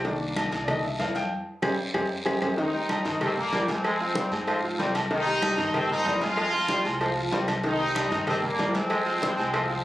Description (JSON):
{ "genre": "latin, salsa", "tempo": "190 BPM", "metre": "4/4", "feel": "straight", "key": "C minor", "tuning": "A4 = 440 Hz", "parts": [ { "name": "clear baby grand piano", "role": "accompaniment", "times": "0.0-9.8 s", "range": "Eb3 to F6", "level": "-30 LUFS", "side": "left 1 dB", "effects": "none" }, { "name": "upright bass", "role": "bass", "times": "0.0-9.8 s", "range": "C2 to Ab2", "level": "-37 LUFS", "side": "equal", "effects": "none" }, { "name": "cowbell", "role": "percussion", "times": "0.0-9.7 s", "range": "none", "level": "-35 LUFS", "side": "left 2 dB", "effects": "none" }, { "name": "congas", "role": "percussion", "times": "0.1-9.8 s", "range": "none", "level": "-34 LUFS", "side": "equal", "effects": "none" }, { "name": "guiro", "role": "percussion", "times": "0.1-9.8 s", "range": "none", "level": "-38 LUFS", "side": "equal", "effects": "none" }, { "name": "claves", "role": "percussion", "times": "0.4-9.7 s", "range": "none", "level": "-37 LUFS", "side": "left 1 dB", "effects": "none" }, { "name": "timbales and agogo bells", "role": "percussion", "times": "0.4-9.7 s", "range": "none", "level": "-31 LUFS", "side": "right 1 dB", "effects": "none" }, { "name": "clear trumpet section", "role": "melody", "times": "2.6-9.8 s", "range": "G3 to F4", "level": "-28 LUFS", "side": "equal", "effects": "none" }, { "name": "bright trombone section", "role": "second line", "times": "2.6-9.7 s", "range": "Eb3 to Ab3", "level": "-32 LUFS", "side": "left 1 dB", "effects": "none" } ], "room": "moderate studio ambience, RT60 0.5 s", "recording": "recorded on a phone in the room, club reverb, compression", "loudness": "-24 LUFS", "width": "side -15 dB against mid", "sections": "0.0-2.6 A section; 2.6-9.8 B section", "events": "grand piano solo 0.0-2.6; band accent 1.3-2.6; drum fill 1.6-2.6", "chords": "0.1 Cm7; 1.3 Fmadd9; 2.6 Cm7; 3.8 Fmadd9; 5.1 Cm7; 6.4 Fmadd9; 7.6 Cm7; 8.9 Fm", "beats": "| 0.05 0.37 0.68 1.00 | 1.32 1.63 1.95 2.27 | 2.58 2.90 3.21 3.53 | 3.85 4.16 4.48 4.79 | 5.11 5.43 5.74 6.06 | 6.38 6.69 7.01 7.32 | 7.64 7.96 8.27 8.59 | 8.90 9.22 9.54" }